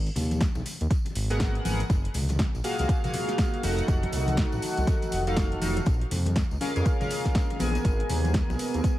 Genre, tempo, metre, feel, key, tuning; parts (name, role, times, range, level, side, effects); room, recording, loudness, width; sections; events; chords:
deep house; 121 BPM; 4/4; swing 61% on 16ths; G# dorian; A4 = 445 Hz
smooth synth bass; bass; 0.0-8.8 s; F1 to E#2; -28 LUFS; equal; sidechain pumping
deep house drum kit; drums; 0.1-9.0 s; hi-hat, snare drum; -35 LUFS; equal; overdrive, analog delay
congas; percussion; 0.2-8.6 s; -35 LUFS; left 2 dB; analog delay
tambourine; percussion; 0.2-9.0 s; -43 LUFS; left 2 dB; analog delay
electronic kick drum; drums; 0.4-9.0 s; -25 LUFS; equal; overdrive
chorused polysynth; stabs; 1.3-9.0 s; A#3 to G#5; -30 LUFS; equal; sidechain pumping, tape echo
light reverb; echo-heavy mix, vinyl crackle; -24 LUFS; side -15 dB against mid
0.0-9.0 A section
0.0 G#m9; 1.9 F#maj9; 3.6 F7b9; 5.9 A#m7; 7.8 G#madd9